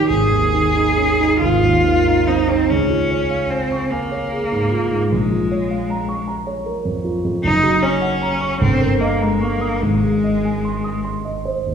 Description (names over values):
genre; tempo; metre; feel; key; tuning
classical, romantic duo for cello and grand piano; 45-53 BPM (dotted quarters); 6/8; rubato; Db major; A4 = 442 Hz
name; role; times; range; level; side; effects
clear cello; melody; 0.0-11.0 s; Ab3 to Ab4; -19 LUFS; left 1 dB; none
dark concert grand piano; accompaniment; 0.0-11.7 s; Gb1 to Eb6; -18 LUFS; right 2 dB; none
room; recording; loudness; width
wet recital hall reverb, RT60 1.5 s; heard from further back in the room; -16 LUFS; side -7 dB against mid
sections
0.0-2.7 A section; 2.7-11.7 B section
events
none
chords
0.1 Absus4; 1.4 Ab; 2.7 Db; 5.1 Bbm7; 7.4 Gb; 8.6 Eb7/G; 9.8 Ab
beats
| 0.09 1.41 | 2.70 3.91 | 5.11 6.28 | 7.44 8.60 | 9.82 11.04